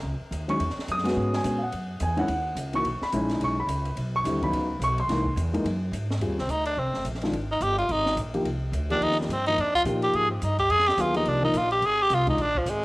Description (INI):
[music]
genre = modal jazz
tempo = 214 BPM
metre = 4/4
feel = swing 60% on 8ths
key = F dorian from 6.2 s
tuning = A4 = 440 Hz
[part]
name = upright bass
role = bass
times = 0.0-12.8 s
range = F1 to A#2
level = -30 LUFS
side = equal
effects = none
[part]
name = open jazz drum kit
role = drums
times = 0.3-12.7 s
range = hi-hat, kick drum, ride cymbal, snare drum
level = -37 LUFS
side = equal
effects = cassette tape
[part]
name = dark concert grand piano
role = accompaniment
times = 0.5-12.4 s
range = C#3 to D#6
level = -27 LUFS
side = equal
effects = cassette tape
[part]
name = growling tenor saxophone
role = melody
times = 6.4-12.8 s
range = F3 to Ab4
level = -23 LUFS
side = equal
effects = cassette tape
[sound]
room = moderate spring reverb, RT60 1.7 s, small room ambience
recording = home recording on cassette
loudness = -23 LUFS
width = side -22 dB against mid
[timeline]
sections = 0.0-6.2 A section; 6.2-12.8 A section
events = tenor saxophone solo 6.2-12.8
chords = 0.0 C#sus2; 1.7 Badd9; 5.1 C7alt; 6.2 Fm9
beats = 0.04 0.32 | 0.60 0.88 1.16 1.44 | 1.73 2.01 2.29 2.57 | 2.85 3.13 3.41 3.69 | 3.97 4.25 4.53 4.81 | 5.09 5.37 5.65 5.93 | 6.21 6.49 6.77 7.05 | 7.33 7.62 7.90 8.18 | 8.46 8.74 9.02 9.30 | 9.58 9.86 10.14 10.42 | 10.70 10.98 11.27 11.55 | 11.83 12.11 12.39 12.67